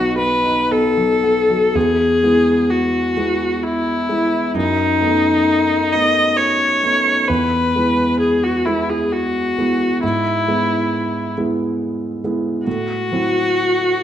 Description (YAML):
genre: classical, romantic duo for viola and grand piano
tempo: 56-70 BPM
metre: 3/4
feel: rubato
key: E major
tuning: A4 = 440 Hz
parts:
  - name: rich viola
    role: melody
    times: 0.0-14.0 s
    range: D#4 to D#5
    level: -16 LUFS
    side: left 2 dB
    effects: none
  - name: dark concert grand piano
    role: accompaniment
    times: 0.0-14.0 s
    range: B1 to E4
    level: -19 LUFS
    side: right 2 dB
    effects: none
room: moderate recital hall reverb, RT60 1.3 s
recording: none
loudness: -15 LUFS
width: side -10 dB against mid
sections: 0.0-1.8 A section; 1.8-14.0 B section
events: none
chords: 0.0 B; 1.8 E; 4.6 B7/F#; 7.3 E; 10.0 E/G#; 12.7 F#m7b5/A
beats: 0.71 | 1.75 2.70 3.62 | 4.55 5.48 6.38 | 7.28 8.20 9.11 | 10.02 10.91 11.79 | 12.66 13.57